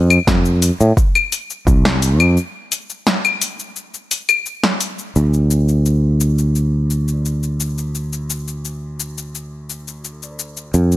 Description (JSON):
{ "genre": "sunset chillout", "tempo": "86 BPM", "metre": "4/4", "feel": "straight", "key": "unclear", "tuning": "A4 = 443 Hz", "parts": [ { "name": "sustaining fretless electric bass", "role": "bass", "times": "0.0-11.0 s", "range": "C2 to A2", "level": "-16 LUFS", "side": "equal", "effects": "none" }, { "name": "deep house drum kit", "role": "drums", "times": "0.1-11.0 s", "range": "cabasa, claves, hi-hat, snare drum", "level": "-18 LUFS", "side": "left 3 dB", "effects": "overdrive" }, { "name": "electronic kick drum", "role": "drums", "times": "0.3-1.8 s", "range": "none", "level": "-15 LUFS", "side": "equal", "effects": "overdrive" } ], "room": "little or no reverb", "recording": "none", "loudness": "-15 LUFS", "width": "side -15 dB against mid", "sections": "0.0-5.2 A section; 5.2-11.0 B section", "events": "break 2.4-5.2", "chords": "none" }